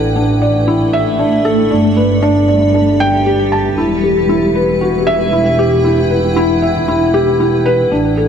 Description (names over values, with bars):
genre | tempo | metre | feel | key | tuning
piano and strings electronica | 116 BPM | 4/4 | straight | E minor | A4 = 440 Hz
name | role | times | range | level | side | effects
granular cloud pad | sustained chords | 0.0-8.3 s | G3 to G5 | -17 LUFS | equal | built-in reverb
felt-muted upright piano | riff | 0.0-8.3 s | D4 to A5 | -13 LUFS | equal | ping-pong delay
rich studio double bass section | bass | 0.0-8.3 s | E1 to A1 | -17 LUFS | equal | none
room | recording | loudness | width
moderate scoring stage reverb, RT60 1.7 s, small room ambience | none | -10 LUFS | side -7 dB against mid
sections
0.0-8.3 A section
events
none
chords
0.0 Asus4; 1.7 Gadd9; 3.8 Emadd9